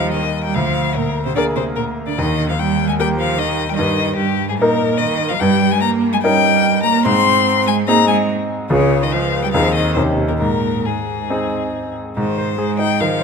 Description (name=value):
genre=quick classical-period movement for piano trio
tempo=146 BPM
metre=4/4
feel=rubato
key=Eb major, Ab major from 5.4 s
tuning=A4 = 440 Hz
part: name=rich violin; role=melody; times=0.0-13.2 s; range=G4 to C6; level=-19 LUFS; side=left 10 dB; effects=none
part: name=clear cello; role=second line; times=0.0-13.2 s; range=G2 to C4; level=-20 LUFS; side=right 6 dB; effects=none
part: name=bright concert grand piano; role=accompaniment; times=0.0-13.2 s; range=Db2 to C5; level=-19 LUFS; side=equal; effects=none
room=moderate scoring stage reverb, RT60 1.6 s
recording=close, detailed microphones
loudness=-15 LUFS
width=side -5 dB against mid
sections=0.0-12.2 A section; 12.2-13.2 B section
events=none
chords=0.0 Eb; 0.5 Bb7/D; 2.2 Eb; 3.8 Eb/G; 5.4 Eb7/G; 7.1 Ab; 8.7 Db; 9.5 Ab/Eb; 10.0 Eb7; 10.4 Ab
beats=0.14 | 0.55 0.96 1.36 1.77 | 2.18 2.58 2.99 3.39 | 3.79 4.19 4.60 5.00 | 5.41 5.82 6.23 6.64 | 7.05 7.47 7.88 8.29 | 8.71 9.12 9.54 9.97 | 10.41 10.85 11.30 11.73 | 12.17 12.59 13.00